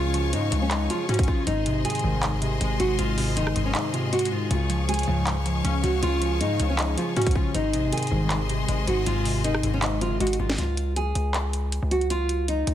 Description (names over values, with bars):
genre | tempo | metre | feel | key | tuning
hip hop, trap | 158 BPM | 4/4 | half-time | Db major | A4 = 438 Hz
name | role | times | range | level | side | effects
nylon-string guitar | melody | 0.0-12.7 s | Db4 to Ab4 | -28 LUFS | right 1 dB | digital delay
glassy digital keys | accompaniment | 0.0-10.6 s | Ab2 to Db4 | -28 LUFS | left 2 dB | chorus
bright symphonic string section | sustained chords | 0.0-10.6 s | Ab4 to Db6 | -33 LUFS | left 4 dB | none
distorted 808-style bass | bass | 0.0-12.7 s | Gb1 to Ab2 | -26 LUFS | equal | distortion
trap drum kit | drums | 0.1-12.7 s | handclaps, hi-hat, kick drum, rim click, snare drum | -28 LUFS | equal | vintage 12-bit sampler grit
mellow synth brass | stabs | 2.0-2.3, 5.1-5.4, 8.1-8.4 s | C2 to F3 | -31 LUFS | left 1 dB | chorus, digital delay
room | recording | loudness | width
light reverb, digital ambience | dense, heavily limited modern master | -22 LUFS | side -11 dB against mid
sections
0.0-10.6 A section; 10.6-12.7 B section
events
kick muted 3.7-4.5; drum fill 10.2-10.6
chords
0.0 Db; 1.5 Ab; 4.5 Db; 7.5 Ab; 10.6 Db